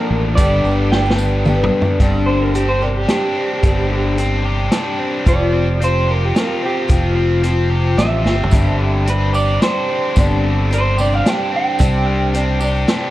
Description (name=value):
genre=folk rock and heartland rock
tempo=110 BPM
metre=3/4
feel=straight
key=G mixolydian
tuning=A4 = 438 Hz
part: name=electric guitar through a small old amp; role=melody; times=0.0-12.6 s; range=G4 to G5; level=-21 LUFS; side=right 3 dB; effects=spring reverb, plate reverb
part: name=picked twelve-string acoustic guitar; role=accompaniment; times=0.0-13.1 s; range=G2 to G4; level=-21 LUFS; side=left 3 dB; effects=plate reverb
part: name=biting overdriven guitar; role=riff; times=0.0-13.1 s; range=G2 to Bb4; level=-22 LUFS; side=equal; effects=none
part: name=fingered electric bass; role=bass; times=0.1-12.8 s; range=F1 to C2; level=-18 LUFS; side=equal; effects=none
part: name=vintage drum kit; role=drums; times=0.4-13.0 s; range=hi-hat, kick drum, snare drum, toms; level=-16 LUFS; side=equal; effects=none
part: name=tambourine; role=percussion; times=0.4-1.5, 8.5-13.0 s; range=none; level=-37 LUFS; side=right 4 dB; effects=none
room=light reverb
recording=worn, warbling old tape, cassette tape, warbly pitch drift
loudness=-14 LUFS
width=side -15 dB against mid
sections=0.0-2.0 A section; 2.0-13.1 B section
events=drum fill 0.9-2.0, 8.3; clean electric guitar solo 2.0-13.1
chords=0.4 G; 2.0 Gsus4; 5.3 Fsus2; 8.5 Gsus4; 11.8 Csus2